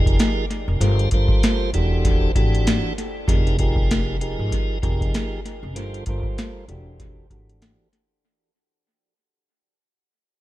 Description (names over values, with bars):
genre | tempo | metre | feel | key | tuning
hip hop, boom-bap hip-hop | 97 BPM | 4/4 | swing 59% on 16ths | unclear | A4 = 440 Hz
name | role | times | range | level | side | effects
tonewheel organ | accompaniment | 0.0-7.9 s | E3 to C5 | -26 LUFS | right 1 dB | slow rotary speaker, cassette tape, low-pass filter, dub echo
upright bass | bass | 0.0-7.7 s | E1 to Ab1 | -23 LUFS | equal | none
booming analog drum machine | drums | 0.1-8.1 s | hi-hat, kick drum, snare drum | -21 LUFS | equal | none
room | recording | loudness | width
studio reverb | echo-heavy mix | -18 LUFS | side -16 dB against mid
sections
0.0-3.3 A section; 3.3-8.2 B section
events
fade-out 3.3-8.2; filter sweep on tonewheel organ 3.3-8.2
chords
0.0 Fm11; 0.8 Gm11; 1.7 Em11; 3.3 Fm11; 5.8 Gm11; 6.7 Em11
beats
0.18 | 0.80 1.42 2.04 2.66 | 3.28 3.90 4.51 5.13 | 5.75 6.37 6.99 7.61